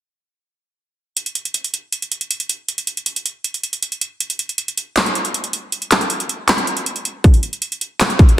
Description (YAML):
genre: hip hop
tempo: 158 BPM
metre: 4/4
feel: half-time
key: none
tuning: none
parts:
  - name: trap drum kit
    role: drums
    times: 1.2-8.4 s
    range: handclaps, hi-hat, kick drum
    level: -15 LUFS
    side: equal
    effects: none
room: moderate recital hall reverb, RT60 1.4 s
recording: dense, heavily limited modern master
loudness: -17 LUFS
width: side -14 dB against mid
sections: 1.2-7.2 A section; 7.2-8.4 B section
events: none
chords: none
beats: | 1.17 1.55 1.93 2.31 | 2.69 3.06 3.44 3.83 | 4.20 4.58 4.96 5.34 | 5.72 6.10 6.48 6.86 | 7.24 7.62 8.00